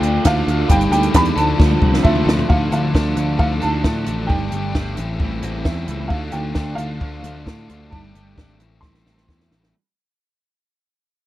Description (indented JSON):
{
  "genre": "indie rock",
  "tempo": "132 BPM",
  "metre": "4/4",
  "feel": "straight",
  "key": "D minor",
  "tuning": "A4 = 445 Hz",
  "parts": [
    { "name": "dark upright piano", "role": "melody", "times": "0.0-9.5 s", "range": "E5 to C6", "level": "-23 LUFS", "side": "right 2 dB", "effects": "none" },
    { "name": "glockenspiel with rubber mallets", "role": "second line", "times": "0.0-2.5 s", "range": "A5 to D6", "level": "-33 LUFS", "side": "left 7 dB", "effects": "none" },
    { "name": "cranked stack guitar", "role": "riff", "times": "0.0-9.7 s", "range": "A2 to A4", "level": "-25 LUFS", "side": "left 6 dB", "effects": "overdrive" },
    { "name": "raw garage guitar", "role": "riff", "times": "0.0-9.7 s", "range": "A2 to F4", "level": "-27 LUFS", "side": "right 8 dB", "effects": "overdrive, ensemble chorus, slapback echo" },
    { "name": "picked electric bass", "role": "bass", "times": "0.0-9.7 s", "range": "G1 to A2", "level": "-22 LUFS", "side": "equal", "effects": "none" },
    { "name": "compact cocktail drum kit", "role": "drums", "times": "0.0-9.7 s", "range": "hi-hat, kick drum, snare drum, toms", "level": "-18 LUFS", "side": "equal", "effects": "none" }
  ],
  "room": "little or no reverb",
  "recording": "dry, close 1970s-style studio recording",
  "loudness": "-16 LUFS",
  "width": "side -15 dB against mid",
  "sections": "0.0-2.5 A section; 2.5-9.7 B section",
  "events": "drum fill 1.6-2.5, 8.8-9.7; fade-out 2.5-9.7",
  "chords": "0.0 Dm; 0.7 Gsus2; 1.4 Dm7; 2.5 Dm; 4.3 Gsus2; 5.0 Am7; 6.1 Dm; 7.9 Gsus2; 8.6 Am7",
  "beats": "0.25 | 0.69 1.14 1.59 2.04 | 2.48 2.94 3.39 3.84 | 4.29 4.74 5.20 5.65 | 6.10 6.55 7.01 7.46 | 7.92 8.37 8.82 9.28"
}